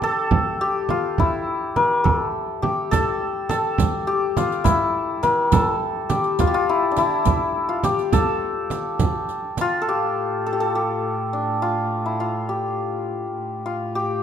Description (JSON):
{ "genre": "Persian modal ensemble", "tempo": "69 BPM (dotted quarters)", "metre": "6/8", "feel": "straight", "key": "A dastgah homayun", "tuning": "A4 = 440 Hz", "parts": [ { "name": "santur", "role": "melody", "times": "0.0-14.2 s", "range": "D4 to Bb4+45c", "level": "-21 LUFS", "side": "left 2 dB", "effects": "none" }, { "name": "frame drum", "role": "percussion", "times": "0.0-9.7 s", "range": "none", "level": "-24 LUFS", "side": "right 4 dB", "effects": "none" }, { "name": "tombak", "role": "percussion", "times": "0.0-9.7 s", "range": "none", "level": "-26 LUFS", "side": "right 4 dB", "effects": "none" }, { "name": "riq", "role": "percussion", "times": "2.9-9.7 s", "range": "none", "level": "-33 LUFS", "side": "right 8 dB", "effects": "none" }, { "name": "dark cello", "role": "drone", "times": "9.9-14.2 s", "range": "A2", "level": "-31 LUFS", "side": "right 2 dB", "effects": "none" } ], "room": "moderate recital hall reverb, RT60 1.7 s", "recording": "minimal, uncompressed stereo recording", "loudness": "-19 LUFS", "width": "side -8 dB against mid", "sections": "0.0-9.9 A section; 9.9-14.2 B section", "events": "none", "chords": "none" }